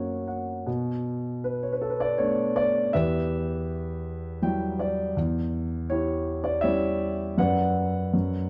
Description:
classical, lyrical solo piano; 80 BPM; 3/4; rubato; B minor; A4 = 437 Hz
warm concert grand piano; solo; 0.0-8.5 s; E2 to G5; -27 LUFS; equal
moderate scoring stage reverb, RT60 1.8 s; dark, warm production; -27 LUFS; mono
0.0-8.5 A section
grand piano fill 0.0-0.7, 4.1-5.2
0.0 F#; 0.7 Bm7; 2.9 Emadd9; 5.2 C#dim/E; 7.4 Bm/F#
| 0.67 1.44 2.20 | 2.94 3.68 4.42 | 5.17 5.90 6.63 | 7.38 8.13

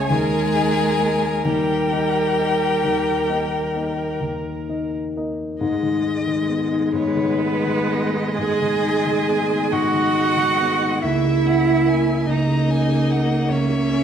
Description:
classical, slow romantic movement for piano quintet; 40-50 BPM (dotted quarters); 12/8; rubato; G# minor; A4 = 440 Hz
warm violin; melody; 0.0-14.0 s; B4 to G#5; -26 LUFS; left 7 dB
rich cello; second line; 0.0-14.0 s; G3 to G#4; -22 LUFS; right 5 dB
rich violin; second line; 0.0-14.0 s; G4 to A#5; -31 LUFS; left 3 dB
dark concert grand piano; accompaniment; 0.0-14.0 s; C#2 to E5; -22 LUFS; left 2 dB
rich viola; accompaniment; 0.0-14.0 s; G#3 to C#5; -25 LUFS; right 2 dB
wet recital hall reverb, RT60 1.5 s; -18 LUFS; side -8 dB against mid
0.0-5.6 A section; 5.6-14.0 B section
0.1 D#; 5.6 G#m; 11.0 A#dim/C#
| 0.11 1.46 2.85 4.22 | 5.62 6.94 8.38 9.72 | 11.02 12.28 13.48

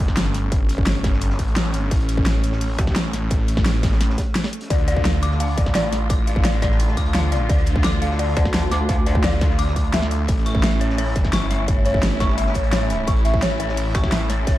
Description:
dark technical drum and bass; 172 BPM; 4/4; straight; D harmonic minor; A4 = 440 Hz
muted studio string section; sustained chords; 0.0-14.6 s; D3 to F4; -28 LUFS; right 1 dB; sidechain pumping
snarling distorted saw bass; bass; 0.0-14.6 s; G1 to D2; -22 LUFS; equal; distortion, tube saturation, sidechain pumping
crunchy breakbeat drum kit; drums; 0.0-14.6 s; hi-hat, snare drum; -38 LUFS; equal
dubstep drum kit; drums; 0.0-14.5 s; hi-hat, snare drum; -24 LUFS; equal
electronic kick drum; drums; 0.0-14.5 s; -21 LUFS; equal; distortion
metallic wobble bass; bass; 2.8-2.9, 8.4-9.2, 13.9-14.1 s; A1 to D2; -22 LUFS; equal; distortion, chorus
dark detuned synth bell; arpeggios; 4.7-14.5 s; C#5 to D6; -26 LUFS; left 2 dB; chorus, phaser, sidechain pumping, dub echo
small room reverb; dark, warm production; -17 LUFS; side -15 dB against mid
0.0-14.6 A section
break 4.4-4.7
0.0 A; 4.7 Dm; 10.3 A
0.17 | 0.52 0.87 1.22 1.56 | 1.91 2.26 2.61 2.96 | 3.31 3.66 4.01 4.36 | 4.70 5.05 5.40 5.75 | 6.10 6.45 6.80 7.15 | 7.50 7.84 8.19 8.54 | 8.89 9.24 9.59 9.94 | 10.29 10.63 10.98 11.33 | 11.68 12.03 12.38 12.73 | 13.08 13.43 13.77 14.12 | 14.47

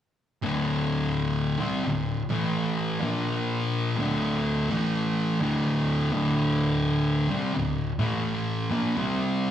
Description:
metal; 84 BPM; 4/4; swing 64% on 8ths; D minor; A4 = 440 Hz
thick fuzz guitar; riff; 0.4-9.5 s; D2 to C4; -25 LUFS; left 2 dB; distortion
thick fuzz guitar; riff; 0.4-9.5 s; D2 to C4; -30 LUFS; right 5 dB; distortion
wet large studio reverb, RT60 1.2 s; band playing live in one room; -24 LUFS; side -10 dB against mid
0.4-9.5 A section
0.4 D5; 2.2 A5; 2.9 Bb5; 4.0 D5; 4.7 A5; 5.4 D5; 7.9 A5; 8.6 Bb5; 9.0 C5
| 0.43 1.14 1.85 2.56 | 3.27 3.99 4.70 5.41 | 6.12 6.83 7.55 8.26 | 8.97

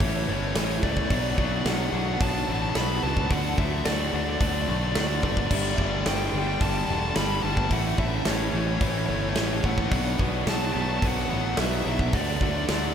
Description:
post-rock; 109 BPM; 4/4; straight; A4 = 440 Hz
nasal lead guitar with a parked wah; melody; 0.0-12.9 s; C#5 to B5; -30 LUFS; left 1 dB; overdrive, analog delay
twangy electric guitar; arpeggios; 0.0-12.9 s; A2 to D4; -38 LUFS; left 3 dB
crunchy overdriven guitar; riff; 0.0-12.9 s; A2 to G4; -32 LUFS; right 9 dB; ensemble chorus
tight distorted guitar; riff; 0.0-12.9 s; G2 to D4; -31 LUFS; left 9 dB; distortion
fuzz fingered electric bass; bass; 0.0-12.9 s; E1 to D2; -29 LUFS; equal; overdrive
huge arena drum kit; drums; 0.0-12.8 s; crash cymbal, hi-hat, kick drum, snare drum; -28 LUFS; equal
mellow electric guitar; arpeggios; 0.3-12.7 s; A4 to C#6; -42 LUFS; right 4 dB
moderate huge ambient reverb, RT60 7.8 s; dreamy mix soaked in reverb; -23 LUFS; side -8 dB against mid
0.0-12.9 A section
0.0 A; 1.1 Bm7; 3.3 D; 5.5 Gsus2; 7.7 A; 9.9 Bm7; 12.1 D
0.01 0.56 | 1.10 1.66 2.21 2.75 | 3.30 3.85 4.41 4.96 | 5.51 6.06 6.61 7.16 | 7.71 8.26 8.81 9.37 | 9.92 10.47 11.03 11.58 | 12.13 12.69

